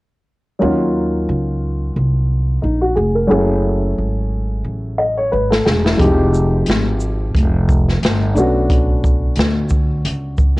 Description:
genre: hip hop, jazz-hop.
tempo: 89 BPM.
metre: 4/4.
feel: swing 57% on 16ths.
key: unclear.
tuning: A4 = 440 Hz.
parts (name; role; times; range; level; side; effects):
dark baby grand piano; accompaniment; 0.6-10.6 s; F3 to Eb5; -18 LUFS; equal; cassette tape.
upright bass; bass; 0.6-10.6 s; Fb1 to Eb2; -18 LUFS; equal; transformer saturation.
open jazz drum kit; drums; 5.5-10.6 s; hi-hat, kick drum, shaker, snare drum; -16 LUFS; equal; vintage 12-bit sampler grit, cassette tape.
room: small room ambience.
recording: home recording on cassette.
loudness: -14 LUFS.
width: side -20 dB against mid.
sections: 0.6-10.6 A section.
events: drum fill 4.7-6.0.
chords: 0.6 Ebm9; 3.3 Gbm9; 6.0 Fm9; 8.4 Bm9.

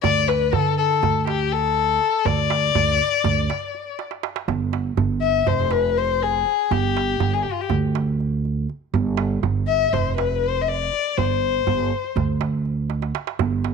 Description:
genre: Turkish makam ensemble.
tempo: 242 BPM (eighths).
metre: 9/8.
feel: straight.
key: G makam hicaz from 4.5 s.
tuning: A4 = 440 Hz.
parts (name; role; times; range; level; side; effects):
dark violin; melody; 0.0-12.2 s; F4 to E5-37c; -20 LUFS; left 9 dB; none.
upright bass; bass; 0.0-13.7 s; F1 to D3; -23 LUFS; right 3 dB; none.
darbuka; percussion; 0.0-13.7 s; none; -26 LUFS; right 10 dB; none.
room: light reverb.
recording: 1960s-style stereo with parts hard left and right.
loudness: -19 LUFS.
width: side -5 dB against mid.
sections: 0.0-4.5 A section; 4.5-13.7 B section.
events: drum fill 4.0-4.5, 12.9-13.4.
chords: none.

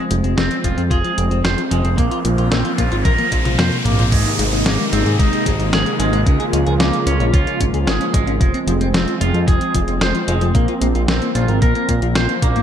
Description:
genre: synthwave.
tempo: 112 BPM.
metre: 4/4.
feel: straight.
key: Bb minor.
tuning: A4 = 441 Hz.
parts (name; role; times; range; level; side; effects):
warm analog pad; sustained chords; 0.0-12.6 s; C3 to F4; -22 LUFS; right 1 dB; chorus, sidechain pumping.
clean electric guitar; riff; 0.0-12.6 s; F3 to Db5; -25 LUFS; left 5 dB; wide subtle chorus, ping-pong delay.
riser and downlifter; sound effects; 1.0-8.4 s; none; -27 LUFS; equal; none.
fat analog bass; bass; 0.1-12.6 s; F1 to Bb2; -19 LUFS; equal; sidechain pumping.
clean 12-bit digital drum machine; drums; 0.1-12.6 s; crash cymbal, hi-hat, snare drum, toms; -21 LUFS; equal; gated reverb.
twangy electric guitar; arpeggios; 0.4-12.6 s; Ab3 to C5; -24 LUFS; right 3 dB; spring reverb, ping-pong delay.
electronic kick drum; drums; 0.6-12.5 s; none; -17 LUFS; equal; none.
room: light reverb.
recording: none.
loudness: -14 LUFS.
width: side -9 dB against mid.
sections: 0.0-4.1 A section; 4.1-12.6 B section.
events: riser 1.0-4.1; drum fill 3.0-4.1.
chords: 0.0 Fm; 2.0 Bbsus2; 4.1 Abadd9; 6.3 Db6; 8.4 Fm; 10.6 Bbsus2.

